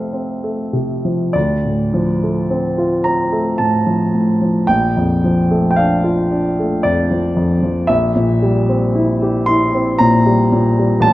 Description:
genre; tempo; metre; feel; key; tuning
classical, romantic nocturne for solo piano; 56 BPM; 3/4; uneven beats, rubato; unclear; A4 = 437 Hz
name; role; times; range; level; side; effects
warm grand piano; solo; 0.0-11.1 s; A1 to C6; -13 LUFS; equal; none
room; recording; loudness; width
moderate recital hall reverb, RT60 1.4 s; close, detailed microphones; -13 LUFS; side -16 dB against mid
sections
0.0-1.4 A section; 1.4-11.1 B section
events
none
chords
0.0 F; 1.4 Dm7; 4.7 Bbmaj7; 7.9 C7/Bb

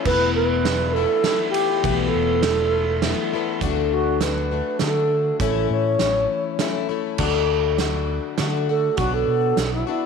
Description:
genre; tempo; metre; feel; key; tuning
folk rock and heartland rock; 101 BPM; 3/4; straight; D major; A4 = 442 Hz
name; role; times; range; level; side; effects
picked plugged-in twelve-string acoustic guitar; accompaniment; 0.0-10.1 s; E2 to F#4; -24 LUFS; left 14 dB; none
mellow wooden-headed alto flute; melody; 0.1-10.1 s; E4 to C#5; -22 LUFS; right 3 dB; none
fingered electric bass; bass; 0.1-9.8 s; E1 to D3; -26 LUFS; right 2 dB; none
loose indie drum kit; drums; 0.1-9.7 s; crash cymbal, hi-hat, kick drum, ride cymbal, snare drum; -26 LUFS; right 6 dB; none
room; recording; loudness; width
light reverb, studio ambience; 1960s-style stereo with parts hard left and right; -19 LUFS; side -6 dB against mid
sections
0.0-3.6 A section; 3.6-10.1 B section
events
alto flute solo 3.6-10.1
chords
0.1 Esus4; 3.6 D; 5.4 A; 7.2 D; 9.0 Bm

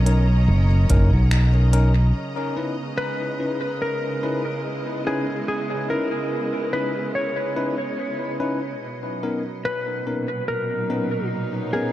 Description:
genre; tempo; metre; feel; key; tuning
ambient dub; 72 BPM; 4/4; swing 56% on 16ths; C# dorian; A4 = 440 Hz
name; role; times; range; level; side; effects
clean lap steel guitar; melody; 0.0-11.9 s; G#4 to C#5; -27 LUFS; left 1 dB; dub echo
dark chamber string section; sustained chords; 0.0-11.9 s; A#2 to A#5; -29 LUFS; right 2 dB; none
fingered electric bass; bass; 0.0-2.1 s; F#1 to B1; -16 LUFS; equal; tube saturation
barky tine electric piano; stabs; 0.1-11.9 s; B3 to B4; -29 LUFS; left 3 dB; low-pass filter, dub echo
organic electronic drum kit; drums; 0.1-1.9 s; finger snaps, hi-hat; -34 LUFS; equal; low-pass filter on hats, low-pass filter on snare, low-pass filter on room, dub echo
electronic kick drum; drums; 0.9-1.1 s; none; -22 LUFS; equal; none
room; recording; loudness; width
light reverb; dark, warm production; -20 LUFS; side -14 dB against mid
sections
0.0-2.1 A section; 2.1-11.9 B section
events
none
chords
0.0 Bmaj9; 2.1 C#m9; 8.8 Bmaj9

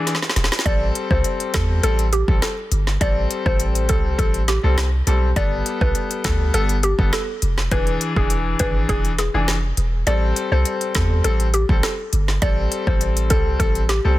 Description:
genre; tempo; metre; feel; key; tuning
dancehall; 102 BPM; 4/4; straight; A minor; A4 = 439 Hz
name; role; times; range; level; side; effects
bright baby grand piano; accompaniment; 0.0-14.2 s; E3 to A4; -25 LUFS; left 3 dB; none
afro-pop drum kit; drums; 0.1-14.0 s; hi-hat, kick drum, rim click, snare drum; -22 LUFS; equal; none
warm 808-style bass; bass; 0.4-14.2 s; E1 to E2; -20 LUFS; equal; none
mallet-like synth pluck; melody; 0.7-14.0 s; G4 to D5; -26 LUFS; equal; chorus, digital delay
room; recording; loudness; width
little or no reverb; dense, heavily limited modern master; -17 LUFS; side -16 dB against mid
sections
0.7-14.2 A section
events
drum fill 0.1-0.7; kick muted 10.1-10.7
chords
0.0 E7; 0.7 Am7; 5.4 Gadd9; 7.7 E7; 10.1 Am7

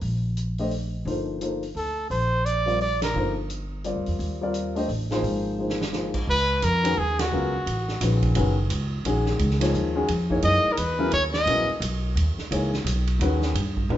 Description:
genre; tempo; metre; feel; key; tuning
modal jazz; 173 BPM; 3/4; swing 62% on 8ths; unclear; A4 = 440 Hz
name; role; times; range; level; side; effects
upright bass; bass; 0.0-14.0 s; Gb1 to A2; -26 LUFS; equal; none
swinging big-band drum kit; drums; 0.0-14.0 s; crash cymbal, hi-hat, kick drum, ride cymbal, snare drum, toms; -33 LUFS; right 2 dB; none
warm concert grand piano; accompaniment; 0.6-14.0 s; Db3 to Eb5; -27 LUFS; left 2 dB; none
bright trumpet; melody; 1.8-3.4, 6.3-8.2, 10.4-11.8 s; Gb4 to Eb5; -24 LUFS; right 1 dB; none
room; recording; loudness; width
moderate large studio reverb, RT60 1.1 s; band playing live in one room, nothing above 7.8 kHz; -22 LUFS; side -12 dB against mid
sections
0.0-6.3 A section; 6.3-14.0 B section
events
band accent 3.0, 7.1; drum fill 5.6-5.9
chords
0.0 Ebmaj9; 5.2 Ab69; 6.3 Db13sus4; 10.4 Gb13sus4

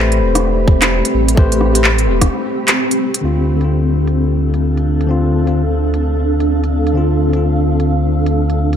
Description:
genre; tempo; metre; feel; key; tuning
future garage; 129 BPM; 4/4; swing 61% on 16ths; D dorian; A4 = 439 Hz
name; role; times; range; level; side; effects
bell-like tine electric piano; accompaniment; 0.0-8.8 s; D3 to C5; -18 LUFS; left 4 dB; sidechain pumping, tape echo
granular cloud pad; sustained chords; 0.0-8.8 s; A3 to B5; -19 LUFS; right 1 dB; built-in reverb, sidechain pumping
warm sub bass; bass; 0.0-8.8 s; E1 to D2; -16 LUFS; equal; sidechain pumping
wind-like tuned noise texture; texture; 0.0-8.8 s; A3 to C5; -27 LUFS; right 2 dB; built-in reverb
organic electronic drum kit; drums; 0.1-8.8 s; handclaps, hi-hat, rim click; -17 LUFS; equal; low-pass filter on hats, low-pass filter on snare, low-pass filter on room
electronic kick drum; drums; 0.7-2.3 s; none; -12 LUFS; equal; none
room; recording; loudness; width
light reverb; none; -12 LUFS; side -8 dB against mid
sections
0.0-3.2 A section; 3.2-8.8 B section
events
filter sweep on tine electric piano 0.0-3.2; break 2.3-3.2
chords
0.0 Am9; 3.2 Dm7

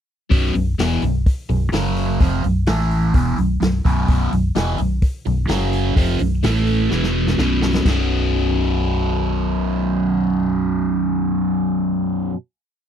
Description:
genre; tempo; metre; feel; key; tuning
blues rock power trio and southern rock; 127 BPM; 4/4; straight; unclear; A4 = 440 Hz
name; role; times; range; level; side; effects
cranked stack guitar; riff; 0.3-12.4 s; B1 to A3; -19 LUFS; right 1 dB; overdrive, phaser
hollow-body short-scale fingered electric bass; bass; 0.3-12.3 s; B0 to A1; -21 LUFS; equal; none
vintage drum kit; drums; 0.3-8.0 s; crash cymbal, hi-hat, kick drum, snare drum; -19 LUFS; equal; none
room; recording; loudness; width
little or no reverb; dry, close 1970s-style studio recording; -17 LUFS; side -9 dB against mid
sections
0.3-7.9 riff; 7.9-11.6 final chord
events
drum fill 6.9-7.9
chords
0.3 B5; 1.7 F#5; 2.2 B5; 2.7 A5; 3.1 B5; 5.5 F#5; 6.0 B5; 6.4 A5; 6.9 E5; 7.4 B5

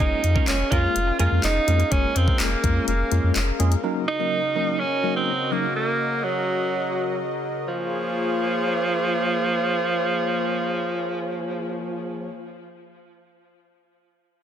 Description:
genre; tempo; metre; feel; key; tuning
dance-pop; 125 BPM; 4/4; straight; Bb minor; A4 = 436 Hz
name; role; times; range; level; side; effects
bright alto saxophone; melody; 0.0-12.3 s; F3 to F4; -24 LUFS; right 2 dB; ping-pong delay
bell-like tine electric piano; accompaniment; 0.0-5.6 s; Gb3 to Db5; -28 LUFS; left 2 dB; medium stereo tremolo, sidechain pumping
warm analog pad; sustained chords; 0.0-12.3 s; Db3 to F5; -29 LUFS; left 2 dB; chorus, sidechain pumping
twelve-string electric guitar; riff; 0.0-1.8 s; Db4 to Bb4; -31 LUFS; right 7 dB; wide subtle chorus
warm sub bass; bass; 0.0-3.8 s; F1 to F2; -22 LUFS; equal; sidechain pumping
smooth R&B drum kit; drums; 0.0-3.8 s; handclaps, hi-hat, kick drum; -24 LUFS; equal; none
room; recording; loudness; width
light reverb; dense, heavily limited modern master; -20 LUFS; side -9 dB against mid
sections
0.0-7.7 A section; 7.7-11.5 B section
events
none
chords
0.0 Bbm7/F; 3.8 Gb6; 7.7 Bbm7

